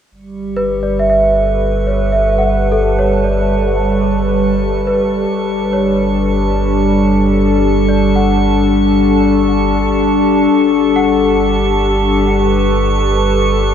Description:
ambient; 69 BPM; 3/4; straight; G lydian; A4 = 439 Hz
warbly tape-like pad; sustained chords; 0.3-13.7 s; G3 to A5; -13 LUFS; left 1 dB; chorus, built-in reverb, shimmer reverb
warm sub bass; bass; 0.1-13.7 s; G1; -19 LUFS; right 1 dB
drifting glass-harmonics texture; texture; 0.6-13.7 s; C#6; -25 LUFS; right 2 dB; chorus, built-in reverb, shimmer reverb
worn celesta; arpeggios; 0.6-13.7 s; A4 to F#5; -19 LUFS; right 1 dB; ping-pong delay, shimmer reverb
wet huge ambient reverb, RT60 7.0 s; cassette tape; -11 LUFS; side -8 dB against mid
0.1-13.7 A section
fade-in on synth texture 0.1-13.7; fade-out on celesta 0.1-13.7
0.1 Gmaj9
| 0.12 0.99 1.86 | 2.73 3.58 4.44 | 5.30 6.16 7.03 | 7.90 8.77 9.64 | 10.52 11.39 12.26 | 13.12

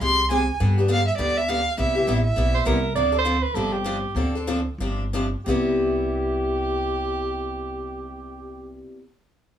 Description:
acoustic string swing (jazz manouche); 173-204 BPM; 4/4; swing 60% on 8ths; C major; A4 = 439 Hz
warm violin; melody; 0.0-2.8 s; D5 to C6; -23 LUFS; right 2 dB
picked swing-style acoustic guitar; accompaniment; 0.0-9.0 s; C3 to A4; -26 LUFS; left 2 dB
upright bass; bass; 0.0-8.8 s; G1 to G2; -26 LUFS; equal
clear soprano saxophone; second line; 2.5-8.8 s; G4 to D5; -27 LUFS; right 4 dB
moderate small room reverb, RT60 0.5 s; band playing live in one room, small room ambience; -21 LUFS; side -10 dB against mid
0.0-3.0 A section; 3.0-5.5 B section; 5.5-8.2 C section
slowing down 3.0-5.5
0.0 Fmadd9; 0.6 G; 1.8 Cmaj7; 3.0 Dm7; 3.6 G7sus4; 4.2 Dm7; 4.8 G7sus4; 5.5 Cmaj7
0.02 0.31 | 0.61 0.90 1.19 1.49 | 1.78 2.08 2.37 2.67 | 2.96 3.25 3.55 3.85 | 4.16 4.47 4.80 5.13 | 5.47 5.81 6.16 6.51 | 6.85 7.20 7.55 7.89

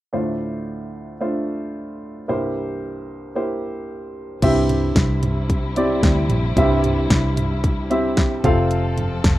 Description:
piano-driven pop; 112 BPM; 4/4; straight; A4 = 440 Hz
warm baby grand piano; accompaniment; 0.1-9.4 s; C2 to F5; -22 LUFS; equal
warm studio string section; sustained chords; 4.4-9.4 s; C3 to A4; -28 LUFS; left 2 dB
vintage muted fingered electric bass; bass; 4.4-9.4 s; F1 to D2; -22 LUFS; equal
house drum kit; drums; 4.4-9.4 s; crash cymbal, hi-hat, kick drum, snare drum, toms; -20 LUFS; equal
light reverb; rough home demo mix; -18 LUFS; side -15 dB against mid
0.1-4.4 A section; 4.4-9.4 B section
0.1 Dm7; 2.3 C7; 4.4 C; 8.4 F
| 0.13 0.67 1.21 1.74 | 2.28 2.82 3.35 3.89 | 4.43 4.96 5.50 6.03 | 6.57 7.11 7.64 8.18 | 8.71 9.25

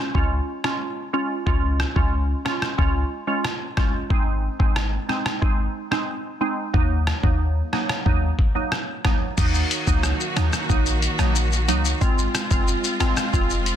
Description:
dancehall; 91 BPM; 4/4; straight; A4 = 439 Hz
glassy wavetable pluck; accompaniment; 0.0-13.5 s; Gb3 to F4; -26 LUFS; right 2 dB; chorus
clean 808-style bass; bass; 0.1-13.7 s; F1 to Eb2; -23 LUFS; equal
trip hop sampler-style drum kit; drums; 0.1-13.8 s; crash cymbal, hi-hat, kick drum, rim click, shaker; -23 LUFS; left 1 dB
bright studio string section; sustained chords; 9.4-13.8 s; Eb3 to Gb4; -28 LUFS; right 1 dB; sidechain pumping
digital ambience; dense, heavily limited modern master; -20 LUFS; side -10 dB against mid
0.0-9.4 A section; 9.4-13.8 B section
0.0 Db; 4.1 Ab; 6.7 Ebm; 12.0 Ab6
0.15 0.81 | 1.47 2.12 2.79 3.44 | 4.10 4.76 5.42 6.08 | 6.74 7.40 8.06 8.72 | 9.38 10.04 10.70 11.36 | 12.02 12.68 13.33

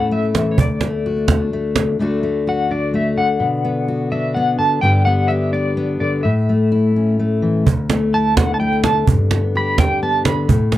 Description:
acoustic folk duo or small band; 127 BPM; 3/4; straight; D major; A4 = 436 Hz
clean electric guitar; melody; 0.0-10.5 s; C#5 to B5; -20 LUFS; equal; tremolo
fingerpicked steel-string acoustic guitar; accompaniment; 0.0-10.8 s; D2 to G4; -17 LUFS; left 2 dB
cajon; percussion; 0.2-1.9, 7.7-10.8 s; -17 LUFS; right 3 dB
light reverb; dry, close 1970s-style studio recording; -15 LUFS; side -14 dB against mid
0.0-2.0 A section; 2.0-10.8 A section
0.0 A; 0.6 D; 3.4 Bm; 4.8 G; 6.2 A; 7.7 Dsus2; 9.1 G
0.10 | 0.58 1.05 1.52 | 1.99 2.47 2.94 | 3.41 3.88 4.36 | 4.83 5.30 5.77 | 6.25 6.72 7.19 | 7.66 8.13 8.61 | 9.08 9.55 10.02 | 10.50

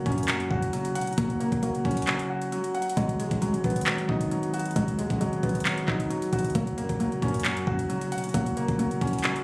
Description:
hip hop, trap; 134 BPM; 4/4; half-time; A4 = 442 Hz
clear baby grand piano; accompaniment; 0.0-9.4 s; F#3 to F#5; -28 LUFS; equal
soft round pluck; arpeggios; 0.0-9.4 s; G#3 to A#3; -32 LUFS; equal; chorus, tape echo
hard-hitting 808-style bass; bass; 0.0-9.4 s; E1 to F#2; -32 LUFS; equal
trap drum kit; drums; 0.1-9.4 s; handclaps, hi-hat, kick drum; -29 LUFS; equal; overdrive
light reverb, digital ambience; recorded on a phone in the room, club reverb, compression; -24 LUFS; side -26 dB against mid
0.0-9.4 A section
0.0 F#; 3.0 G#m7; 6.6 F#
0.28 0.73 | 1.18 1.63 2.07 2.52 | 2.97 3.42 3.87 4.31 | 4.76 5.21 5.66 6.10 | 6.55 7.00 7.45 7.89 | 8.34 8.79 9.24

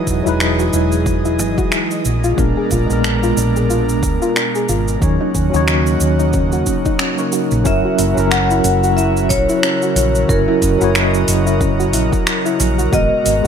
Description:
sunset chillout; 91 BPM; 4/4; swing 57% on 16ths; A4 = 438 Hz
tine electric piano; accompaniment; 0.0-13.5 s; F#3 to C#5; -19 LUFS; equal; medium stereo tremolo, auto-pan, digital delay
airy breathy pad; sustained chords; 0.0-13.5 s; B2 to D#5; -22 LUFS; right 1 dB; chorus
hollow-body short-scale fingered electric bass; bass; 0.1-13.5 s; E1 to D#2; -18 LUFS; equal; tube saturation
deep house drum kit; drums; 0.1-13.5 s; cabasa, finger snaps, hi-hat; -21 LUFS; right 1 dB; overdrive
electronic kick drum; drums; 0.1-13.1 s; -20 LUFS; equal; overdrive
soft round pluck; arpeggios; 0.3-13.5 s; C#4 to C#5; -23 LUFS; left 2 dB; lush chorus, digital delay
vibraphone with medium mallets; melody; 7.7-13.5 s; A#4 to F#5; -19 LUFS; left 1 dB; ping-pong delay
light reverb, digital ambience; -13 LUFS; side -7 dB against mid
0.0-7.7 A section; 7.7-13.5 B section
0.0 Emaj9; 2.0 A#7b9; 5.0 D#m7; 7.7 F#7; 12.9 G#m9
0.40 1.06 1.72 | 2.38 3.04 3.70 4.36 | 5.02 5.68 6.33 7.00 | 7.65 8.31 8.97 9.63 | 10.29 10.95 11.61 12.27 | 12.93

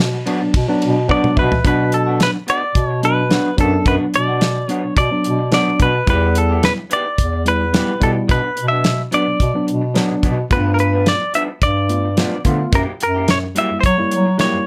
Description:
straight-eighth soul blues; 108 BPM; 4/4; swing 54% on 16ths; B minor; A4 = 440 Hz
electric guitar through a small old amp; stabs; 0.0-14.6 s; G2 to G4; -30 LUFS; equal
breathy bass clarinet; bass; 0.0-14.6 s; E2 to F#3; -22 LUFS; equal
damped 70s drum kit; drums; 0.0-14.5 s; hi-hat, kick drum, ride cymbal, snare drum, toms; -20 LUFS; equal
tine electric piano; accompaniment; 0.3-14.7 s; F#3 to F#5; -23 LUFS; equal
direct-recorded clean electric guitar; melody; 1.1-14.7 s; A4 to E5; -21 LUFS; equal; slapback echo
light reverb; -17 LUFS; mono
0.0-1.6 A section; 1.6-14.7 B section
clean electric guitar solo 0.0-1.6; tine electric piano fill 0.8-1.6; drum fill 1.1-1.6
0.0 Bm; 6.1 Em; 8.3 Bm; 10.5 G7; 12.7 F#7b9
0.54 1.09 | 1.65 2.20 2.75 3.31 | 3.86 4.41 4.96 5.52 | 6.07 6.63 7.18 7.73 | 8.29 8.84 9.40 9.95 | 10.51 11.06 11.62 12.17 | 12.72 13.28 13.83 14.39

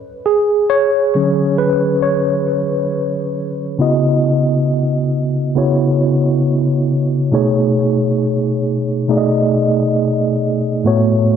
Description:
R&B; 68 BPM; 4/4; straight; C# minor; A4 = 440 Hz
mellow tine electric piano; solo; 0.3-11.4 s; A2 to D#5; -14 LUFS; equal; medium stereo tremolo
moderate lush hall reverb, RT60 2.6 s; dark, warm production, low-pass filter; -14 LUFS; side -8 dB against mid
0.0-3.8 A section; 3.8-11.4 B section
tine electric piano solo 0.0-3.8
0.0 Dmaj7; 3.8 C#m11; 7.3 B13; 10.9 A69
| 0.26 1.15 2.03 2.91 | 3.79 4.68 5.56 6.44 | 7.32 8.21 9.09 9.97 | 10.85

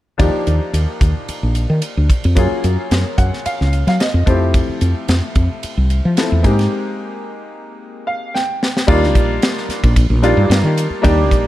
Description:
electric jazz fusion; 110 BPM; 4/4; straight; A4 = 440 Hz
bright baby grand piano; accompaniment; 0.2-11.5 s; F3 to G5; -20 LUFS; left 1 dB
woody fretless electric bass; bass; 0.2-11.5 s; Bb1 to Gb3; -15 LUFS; equal
crisp fusion drum kit; drums; 0.2-11.4 s; crash cymbal, hi-hat, kick drum, ride cymbal, snare drum; -18 LUFS; equal
little or no reverb; dark, warm production; -13 LUFS; side -15 dB against mid
0.2-8.9 A section; 8.9-11.5 B section
grand piano fill 2.9-4.5, 7.8-8.9; break 6.7-8.9; drum fill 8.3-8.9
0.2 Ebmaj9; 2.4 Gbmaj9; 4.3 Fmaj9; 6.4 Abmaj9; 8.9 Ebmaj9
| 0.19 0.73 1.28 1.82 | 2.37 2.91 3.45 3.99 | 4.54 5.08 5.62 6.17 | 6.71 7.25 7.79 8.34 | 8.88 9.42 9.96 10.50 | 11.04

